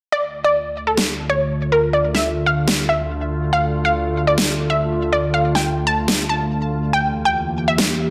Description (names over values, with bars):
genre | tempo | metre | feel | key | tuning
heavy wobble dubstep | 141 BPM | 4/4 | half-time | D minor | A4 = 440 Hz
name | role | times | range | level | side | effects
unison pluck | melody | 0.1-7.9 s | A4 to A5 | -22 LUFS | equal | delay
evolving wavetable pad | sustained chords | 0.6-8.1 s | D2 to G4 | -24 LUFS | equal | chorus, built-in reverb
electronic snare drum | drums | 1.0-7.9 s | none | -22 LUFS | equal | small room ambience
room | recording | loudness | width
moderate digital room reverb, RT60 1.3 s | dense, heavily limited modern master | -19 LUFS | mono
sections
0.1-8.1 A section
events
filter sweep on ambient pad 0.1-8.1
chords
0.1 Dm; 6.9 Edim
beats
| 0.12 0.55 0.97 1.40 | 1.82 2.25 2.68 3.10 | 3.53 3.95 4.38 4.80 | 5.23 5.66 6.08 6.51 | 6.93 7.36 7.78